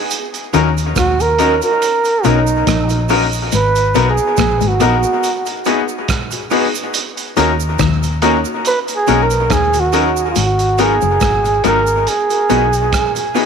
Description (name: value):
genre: lovers rock reggae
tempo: 70 BPM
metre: 4/4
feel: swing 55% on 16ths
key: G# minor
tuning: A4 = 438 Hz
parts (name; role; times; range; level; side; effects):
- crunchy breakbeat drum kit; drums; 0.1-13.5 s; hi-hat, kick drum, rim click; -22 LUFS; right 4 dB; none
- cabasa; percussion; 0.1-13.5 s; none; -32 LUFS; right 14 dB; tape echo
- clear grand piano; accompaniment; 0.5-13.5 s; B3 to A#4; -19 LUFS; left 10 dB; tape echo
- electric guitar with an envelope filter; riff; 0.5-12.8 s; F#2 to D#3; -22 LUFS; left 13 dB; analog chorus
- electric guitar through a small old amp; stabs; 0.5-13.5 s; F#3 to B4; -23 LUFS; right 9 dB; wide subtle chorus, tape echo
- vintage muted fingered electric bass; bass; 0.5-12.9 s; F#1 to D#2; -18 LUFS; equal; none
- breathy flugelhorn; melody; 1.0-13.4 s; D#4 to B4; -16 LUFS; right 3 dB; tape echo
room: light reverb, studio reverb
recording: 1960s-style stereo with parts hard left and right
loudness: -12 LUFS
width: side -6 dB against mid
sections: 0.0-10.4 A section; 10.4-13.5 B section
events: flugelhorn solo 0.0-10.4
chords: 0.1 D#m7; 1.8 Bmaj7; 3.5 G#m9; 5.2 B6; 6.9 D#m7; 8.7 Bmaj7; 9.5 D#m7; 10.4 G#m9; 12.1 B6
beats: | 0.11 0.96 1.81 2.67 | 3.52 4.38 5.23 6.09 | 6.94 7.80 8.65 9.51 | 10.36 11.22 12.07 12.93